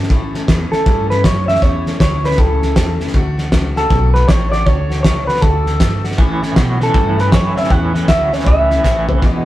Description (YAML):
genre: rockabilly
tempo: 158 BPM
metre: 4/4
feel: swing 64% on 8ths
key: A mixolydian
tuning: A4 = 442 Hz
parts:
  - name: picked steel-string acoustic guitar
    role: accompaniment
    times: 0.0-9.4 s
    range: E2 to F#4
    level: -25 LUFS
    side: left 3 dB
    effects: none
  - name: upright bass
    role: bass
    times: 0.0-9.4 s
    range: A1 to B2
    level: -18 LUFS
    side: equal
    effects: none
  - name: cloth-damped thuddy drum kit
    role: drums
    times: 0.0-9.3 s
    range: hi-hat, kick drum, snare drum, toms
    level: -15 LUFS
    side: equal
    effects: none
  - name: electric guitar through a small old amp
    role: melody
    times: 0.7-9.1 s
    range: A4 to F#5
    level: -17 LUFS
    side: equal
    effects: none
  - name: twangy electric guitar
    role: riff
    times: 6.2-9.4 s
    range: E2 to F#3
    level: -21 LUFS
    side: right 2 dB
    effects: tremolo
room: moderate stone room reverb, RT60 1.1 s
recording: rough rehearsal-room recording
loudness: -12 LUFS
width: side -15 dB against mid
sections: 0.0-9.4 A section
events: drum fill 8.8-9.2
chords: 0.0 A; 3.1 D; 6.2 A